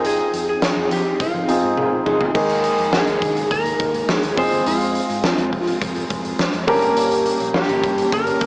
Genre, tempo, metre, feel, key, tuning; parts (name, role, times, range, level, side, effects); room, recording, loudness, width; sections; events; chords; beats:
1980s-style pop; 104 BPM; 4/4; straight; F minor; A4 = 439 Hz
lightly driven lead guitar; melody; 0.0-8.5 s; F4 to C5; -22 LUFS; equal; cassette tape
warm grand piano; accompaniment; 0.0-8.5 s; G2 to Bb4; -21 LUFS; equal; cassette tape
string machine, violas; sustained chords; 0.0-8.5 s; F3 to G5; -25 LUFS; equal; ensemble chorus, cassette tape
vintage muted fingered electric bass; bass; 0.0-8.5 s; F1 to F3; -33 LUFS; equal
big rock drum kit; drums; 0.0-8.5 s; crash cymbal, hi-hat, kick drum, snare drum, toms; -22 LUFS; equal
mellow synth brass; stabs; 1.8-2.3 s; Eb4 to Ab4; -22 LUFS; equal; chorus, phaser, cassette tape
moderate spring reverb, RT60 2.5 s; home recording on cassette, small speaker sound; -16 LUFS; side -35 dB against mid
0.0-2.4 A section; 2.4-8.5 B section
band accent 0.0-2.4; drum fill 1.8-2.4
0.0 Fm7; 2.4 Ebsus4; 4.4 Fm; 6.7 Gdim
| 0.04 0.62 1.20 1.78 | 2.35 2.93 3.51 4.08 | 4.66 5.24 5.81 6.39 | 6.97 7.54 8.12